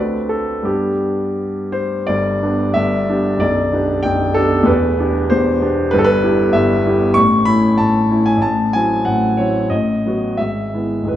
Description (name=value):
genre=classical, romantic character piece for solo piano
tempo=81-98 BPM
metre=2/4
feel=rubato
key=G major, E major from 7.2 s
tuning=A4 = 441 Hz
part: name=warm baby grand piano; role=solo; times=0.0-11.2 s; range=B0 to C#6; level=-14 LUFS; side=equal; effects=none
room=wet recital hall reverb, RT60 1.4 s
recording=none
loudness=-14 LUFS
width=side -12 dB against mid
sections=0.0-2.1 A section; 2.1-11.2 B section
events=none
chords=0.0 D7; 0.7 G; 3.4 G/B; 4.7 Em7; 5.9 Em/G; 7.2 A; 8.4 F#m7b5/A; 9.7 B7/A; 10.4 E/G#